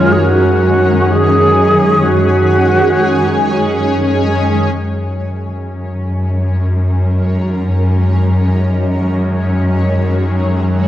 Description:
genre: ambient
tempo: free time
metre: none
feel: none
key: F# major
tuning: A4 = 440 Hz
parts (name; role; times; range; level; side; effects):
- bright alto flute; melody; 0.0-3.8 s; E#4 to G#4; -13 LUFS; right 1 dB; tape echo
- shimmering ambient pad; sustained chords; 0.0-10.9 s; D#3 to A#4; -16 LUFS; equal; chorus, built-in reverb, phaser
- rich studio cello section; bass; 0.0-10.9 s; F#2; -14 LUFS; equal; none
room: wet concert hall reverb, RT60 2.0 s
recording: worn, warbling old tape, cassette tape, warbly pitch drift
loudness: -11 LUFS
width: side -12 dB against mid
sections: 0.0-4.8 A section; 4.8-10.9 B section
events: fade-in on ambient pad 4.8-10.9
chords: 0.0 F#

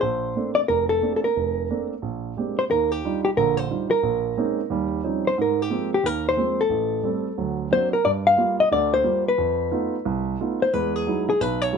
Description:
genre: jazz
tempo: 179 BPM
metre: 4/4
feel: swing 64% on 8ths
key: Eb major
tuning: A4 = 440 Hz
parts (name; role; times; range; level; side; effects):
- hollow-body jazz guitar; melody; 0.0-11.8 s; G4 to F5; -21 LUFS; left 2 dB; none
- dark grand piano; accompaniment; 0.0-11.8 s; F1 to G4; -25 LUFS; right 6 dB; none
room: moderate studio reverb, RT60 0.7 s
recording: minimal, uncompressed stereo recording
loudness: -20 LUFS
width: side -6 dB against mid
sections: 0.0-2.7 A section; 2.7-11.8 B section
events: none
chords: 0.0 Bbmaj9; 2.0 Bb13; 2.7 Ebmaj9; 4.0 Bbm11; 4.7 Eb13; 5.4 Ab69; 6.7 Am7; 7.4 D7b13; 8.0 Gm7; 9.4 F7#11; 10.7 Emaj9

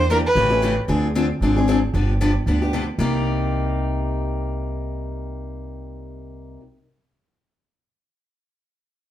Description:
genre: acoustic string swing (jazz manouche)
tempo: 228 BPM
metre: 4/4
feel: swing 56% on 8ths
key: C minor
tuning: A4 = 440 Hz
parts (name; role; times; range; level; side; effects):
- warm violin; melody; 0.0-0.7 s; Bb4 to B4; -19 LUFS; right 1 dB; none
- picked steel-string acoustic guitar; accompaniment; 0.0-6.6 s; C3 to Ab4; -23 LUFS; left 2 dB; none
- upright bass; bass; 0.0-6.6 s; G1 to E2; -23 LUFS; equal; none
room: wet club reverb, RT60 0.7 s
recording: heard from further back in the room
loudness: -19 LUFS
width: side -12 dB against mid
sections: 0.9-3.0 A section; 3.0-5.1 B section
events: none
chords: 0.4 A7; 0.9 Dm7b5; 1.9 G7; 3.0 Cm7

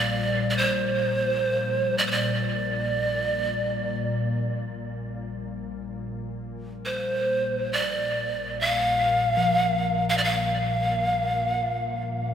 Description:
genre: world meditative, free-time meditation music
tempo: free time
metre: none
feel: none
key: Bb major pentatonic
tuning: A4 = 439 Hz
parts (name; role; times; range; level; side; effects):
- breathy pan flute; melody; 0.0-12.3 s; C5 to F5; -24 LUFS; right 1 dB; dub echo
- ethereal airy pad; drone; 0.0-12.3 s; Bb1 to Bb2; -31 LUFS; left 1 dB; ensemble chorus, built-in reverb
- bronze singing bowl; texture; 0.0-12.3 s; F3 to G3; -34 LUFS; left 7 dB; none
room: wet echo chamber reverb, RT60 1.5 s, small room ambience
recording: echo-heavy mix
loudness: -23 LUFS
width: side -8 dB against mid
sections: 0.0-12.3 A section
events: none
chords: none

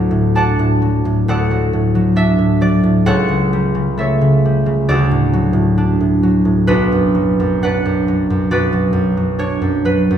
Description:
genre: classical, solo harp piece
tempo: 60-70 BPM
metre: 4/4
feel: rubato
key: D major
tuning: A4 = 439 Hz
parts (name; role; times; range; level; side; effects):
- concert harp; solo; 0.0-10.2 s; B1 to A5; -13 LUFS; equal; none
room: wet recital hall reverb, RT60 1.5 s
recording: heard from further back in the room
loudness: -13 LUFS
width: side -9 dB against mid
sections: 0.0-10.2 A section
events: none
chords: 0.0 D; 3.1 A7/C#; 4.9 D; 6.7 Bm

